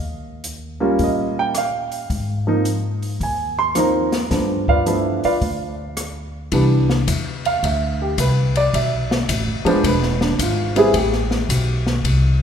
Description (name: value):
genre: jazz piano trio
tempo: 109 BPM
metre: 4/4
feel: swing 67% on 8ths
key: C major from 6.5 s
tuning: A4 = 440 Hz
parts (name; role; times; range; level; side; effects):
- upright bass; bass; 0.0-12.4 s; D1 to Bb2; -22 LUFS; left 1 dB; none
- open jazz drum kit; drums; 0.4-12.2 s; hi-hat, kick drum, ride cymbal, rim click, snare drum; -24 LUFS; left 2 dB; none
- warm baby grand piano; melody; 0.8-11.8 s; E3 to C6; -19 LUFS; right 2 dB; none
room: moderate concert hall reverb, RT60 2.4 s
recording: recorded in a church or concert hall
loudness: -17 LUFS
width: side -8 dB against mid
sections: 0.0-6.5 A section; 6.5-12.4 B section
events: none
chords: 0.0 Eb7; 2.1 Ab69; 4.3 G9; 6.5 Cmaj9; 8.7 Bm7b5; 9.8 E; 10.9 Am9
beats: 0.45 1.00 1.55 | 2.10 2.66 3.21 3.76 | 4.31 4.87 5.42 5.97 | 6.52 7.07 7.63 8.18 | 8.73 9.28 9.83 10.39 | 10.94 11.49 12.04